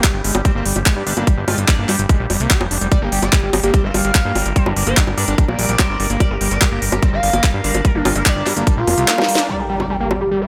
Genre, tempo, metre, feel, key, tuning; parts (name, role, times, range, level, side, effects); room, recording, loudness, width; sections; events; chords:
psychedelic trance; 146 BPM; 4/4; straight; G minor; A4 = 440 Hz
overtone-sweeping drone; sustained chords; 0.0-10.5 s; G3 to Bb4; -30 LUFS; equal; chorus, built-in reverb, sidechain pumping
overdriven acid bass; riff; 0.0-10.5 s; G3 to G4; -27 LUFS; equal; distortion, sidechain pumping, dub echo
electronic kick drum; drums; 0.0-8.8 s; -17 LUFS; equal
garage drum kit; drums; 0.0-10.2 s; bongos, handclaps, hi-hat, snare drum; -21 LUFS; equal
fat analog bass; bass; 0.1-9.1 s; F1 to G2; -23 LUFS; equal
metallic wobble bass; second line; 0.5-8.6 s; C4 to F4; -33 LUFS; equal; distortion, lush chorus, sidechain pumping, high-pass filter, digital delay
overdriven synth lead; melody; 2.9-10.5 s; D4 to F5; -24 LUFS; equal; distortion, chorus, phaser, sidechain pumping, digital delay
impact; sound effects; 9.5-10.5 s; -29 LUFS; equal
light reverb; -16 LUFS; mono
0.0-9.5 A section
drop 0.0-9.5; kick drops out 9.1-9.5; drum fill 9.1-9.5; band accent 9.4; impact 9.5-10.5
0.0 G5